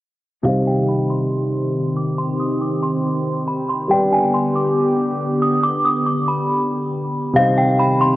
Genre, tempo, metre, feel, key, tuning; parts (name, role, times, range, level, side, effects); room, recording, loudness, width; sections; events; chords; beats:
hip hop; 139 BPM; 4/4; half-time; C harmonic minor; A4 = 440 Hz
warm concert grand piano; accompaniment; 0.4-8.2 s; C3 to D5; -21 LUFS; equal; low-pass filter
metallic FM bell; melody; 0.5-8.2 s; F5 to Eb6; -20 LUFS; equal; chorus, low-pass filter, tape echo
warm analog pad; sustained chords; 0.5-8.2 s; D3 to G4; -22 LUFS; equal; lush chorus, low-pass filter
light reverb, small room ambience; worn, warbling old tape, cassette tape, warbly pitch drift, lossy compression artefacts; -16 LUFS; side -16 dB against mid
0.5-8.2 A section
filter sweep 0.5-8.2
0.5 Cm; 3.9 G; 7.4 Cm
| 0.45 0.89 1.32 1.75 | 2.18 2.61 3.04 3.48 | 3.91 4.34 4.77 5.20 | 5.63 6.07 6.50 6.93 | 7.36 7.79